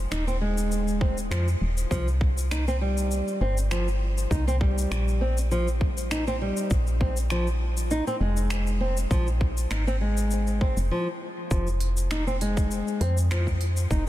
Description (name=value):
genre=organic downtempo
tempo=100 BPM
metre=4/4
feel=swing 54% on 16ths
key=F minor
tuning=A4 = 440 Hz
part: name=woody FM bass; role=bass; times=0.0-14.1 s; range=Eb1 to F2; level=-25 LUFS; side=equal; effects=sidechain pumping
part: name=nylon-string guitar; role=arpeggios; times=0.1-14.1 s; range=F3 to Eb4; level=-29 LUFS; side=equal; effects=vintage 12-bit sampler grit, low-pass filter, ping-pong delay, shimmer reverb
part: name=organic electronic drum kit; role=drums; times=0.1-14.0 s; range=finger snaps, hi-hat, shaker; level=-36 LUFS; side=left 1 dB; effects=overdrive, soft clipping on snare
part: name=electronic kick drum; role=drums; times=1.0-14.0 s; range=none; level=-26 LUFS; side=equal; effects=overdrive
room=light reverb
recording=dense, heavily limited modern master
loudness=-23 LUFS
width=side -14 dB against mid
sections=0.0-11.5 A section; 11.5-14.1 A section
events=break 10.9-11.5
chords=0.0 Fm7; 1.9 C7(no3); 6.7 Bbsus2; 11.5 Fm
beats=0.11 0.71 1.31 | 1.91 2.51 3.11 3.71 | 4.31 4.91 5.51 6.11 | 6.71 7.31 7.91 8.51 | 9.11 9.71 10.31 10.91 | 11.51 12.11 12.71 13.31 | 13.91